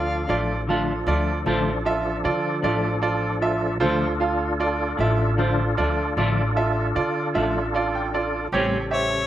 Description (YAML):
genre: blues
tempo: 51 BPM (dotted quarters)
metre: 12/8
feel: straight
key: D minor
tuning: A4 = 438 Hz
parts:
  - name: warm harmonica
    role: melody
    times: 0.0-0.6, 8.9-9.3 s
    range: C#5 to F5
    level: -25 LUFS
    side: left 3 dB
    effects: overdrive, slapback echo
  - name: bright concert grand piano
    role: accompaniment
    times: 0.0-9.2 s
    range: F4 to A5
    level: -24 LUFS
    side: right 3 dB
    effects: slapback echo
  - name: tonewheel organ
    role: sustained chords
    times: 0.0-9.3 s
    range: C#3 to A4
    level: -27 LUFS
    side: equal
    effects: chorus vibrato, fast rotary speaker
  - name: upright bass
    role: bass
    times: 0.0-9.3 s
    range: A1 to D3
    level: -27 LUFS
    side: left 1 dB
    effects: none
  - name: clean electric guitar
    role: accompaniment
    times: 0.3-8.8 s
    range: A2 to D4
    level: -28 LUFS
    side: left 4 dB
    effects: harmonic tremolo
room: little or no reverb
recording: recorded outdoors, with no room sound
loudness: -20 LUFS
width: side -12 dB against mid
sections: 0.0-9.3 A section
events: grand piano fill 7.3-8.5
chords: 0.0 Dm; 8.5 A7#9